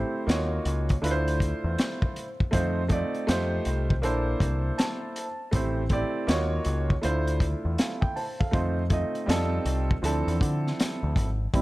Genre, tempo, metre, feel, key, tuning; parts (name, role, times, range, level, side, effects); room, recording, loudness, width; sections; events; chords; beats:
hip hop, jazz-hop; 80 BPM; 4/4; swing 63% on 16ths; D minor; A4 = 440 Hz
dark concert grand piano; accompaniment; 0.0-11.6 s; F3 to A5; -29 LUFS; right 1 dB
deep dub picked electric bass; bass; 0.0-11.6 s; G#1 to D3; -28 LUFS; equal
crunchy breakbeat drum kit; drums; 0.3-11.6 s; hi-hat, kick drum, snare drum; -27 LUFS; equal
light reverb, small room ambience; -24 LUFS; side -18 dB against mid
0.0-11.5 A section
grand piano fill 4.4-5.5
0.3 Ebm9; 1.0 Dm9; 2.5 F7; 3.3 F9; 4.0 Bbmaj9#11; 5.5 Am7; 6.3 Ebm9; 7.0 Dm9; 8.5 F7; 9.3 F9; 10.0 Dm9
0.28 1.03 1.78 | 2.53 3.28 4.03 4.78 | 5.53 6.28 7.03 7.78 | 8.53 9.28 10.03 10.78 | 11.53